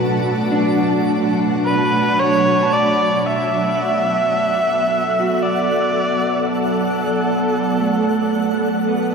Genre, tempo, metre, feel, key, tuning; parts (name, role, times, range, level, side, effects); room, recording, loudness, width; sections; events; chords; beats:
ambient; 56 BPM; 3/4; straight; B minor; A4 = 438 Hz
ethereal airy pad; sustained chords; 0.0-9.1 s; B2 to A5; -20 LUFS; right 1 dB; ensemble chorus, built-in reverb, tremolo, shimmer reverb
electric guitar at the edge of break-up; arpeggios; 0.0-9.1 s; A3 to A5; -23 LUFS; right 1 dB; shimmer reverb, ping-pong delay
twinkling granular texture; texture; 0.0-9.1 s; D4 to D7; -30 LUFS; right 3 dB; built-in reverb, shimmer reverb
dark electric violin; melody; 1.7-9.1 s; A4 to E5; -18 LUFS; equal; shimmer reverb, ping-pong delay
wet huge ambient reverb, RT60 8.1 s; -15 LUFS; side -5 dB against mid
0.0-3.2 A section; 3.2-9.1 B section
0.0 D/B; 3.2 Bm7
| 0.03 1.10 2.17 | 3.25 4.32 5.39 | 6.46 7.53 8.60